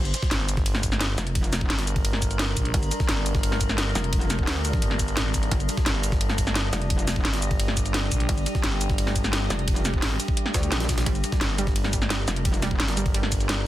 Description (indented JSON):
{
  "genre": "dark technical drum and bass",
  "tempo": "173 BPM",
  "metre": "4/4",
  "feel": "straight",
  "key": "G minor",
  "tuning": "A4 = 440 Hz",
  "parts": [
    { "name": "metallic inharmonic drone", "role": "sustained chords", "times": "0.0-13.7 s", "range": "G3 to Bb4", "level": "-32 LUFS", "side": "left 1 dB", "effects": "chorus, built-in reverb, sidechain pumping" },
    { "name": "metallic wobble bass", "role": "bass", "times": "0.0-12.8 s", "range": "F1 to D2", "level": "-27 LUFS", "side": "equal", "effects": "chorus, tube saturation" },
    { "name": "drum and bass drum kit", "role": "drums", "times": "0.1-13.6 s", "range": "hi-hat, shaker, snare drum", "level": "-28 LUFS", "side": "equal", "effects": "none" },
    { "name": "jungle sampler-style drum kit", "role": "drums", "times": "0.1-13.6 s", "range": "hi-hat, ride cymbal, snare drum", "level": "-37 LUFS", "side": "right 2 dB", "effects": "high-pass filter on cymbals, high-pass filter on snare, high-pass filter on hats" },
    { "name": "electronic kick drum", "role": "drums", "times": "0.2-13.4 s", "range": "none", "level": "-26 LUFS", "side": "equal", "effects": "overdrive" },
    { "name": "growling FM bass", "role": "bass", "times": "0.3-13.7 s", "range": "G1 to Bb1", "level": "-27 LUFS", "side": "equal", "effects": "none" },
    { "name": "analog pluck", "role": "arpeggios", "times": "11.1-13.6 s", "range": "G3", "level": "-33 LUFS", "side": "right 6 dB", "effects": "chorus, vintage 12-bit sampler grit, sidechain pumping, digital delay" }
  ],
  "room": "little or no reverb",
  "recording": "dense, heavily limited modern master",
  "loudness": "-22 LUFS",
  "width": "side -14 dB against mid",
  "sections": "0.0-13.7 A section",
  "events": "none",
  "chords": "0.0 Gm",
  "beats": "0.31 0.66 1.01 | 1.35 1.70 2.05 2.39 | 2.74 3.09 3.43 3.78 | 4.13 4.47 4.82 5.17 | 5.51 5.86 6.21 6.55 | 6.90 7.25 7.59 7.94 | 8.29 8.64 8.98 9.33 | 9.68 10.02 10.37 10.72 | 11.06 11.41 11.76 12.10 | 12.45 12.80 13.14 13.49"
}